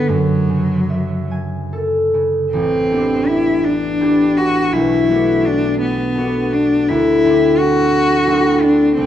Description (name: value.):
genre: classical, impressionist duo for cello and harp.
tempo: 48-59 BPM (dotted quarters).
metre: 6/8.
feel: rubato.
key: A dorian.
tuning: A4 = 440 Hz.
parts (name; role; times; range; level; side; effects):
warm cello; melody; 0.0-9.1 s; F#3 to F#4; -16 LUFS; left 3 dB; none.
concert harp; accompaniment; 0.0-9.1 s; A1 to B5; -16 LUFS; right 1 dB; none.
room: moderate recital hall reverb, RT60 1.5 s.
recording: nothing above 10.8 kHz.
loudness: -13 LUFS.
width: side -10 dB against mid.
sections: 0.0-2.5 A section; 2.5-9.1 B section.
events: none.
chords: 0.1 F#m9; 2.5 Am11; 4.7 Bm7; 6.9 D9.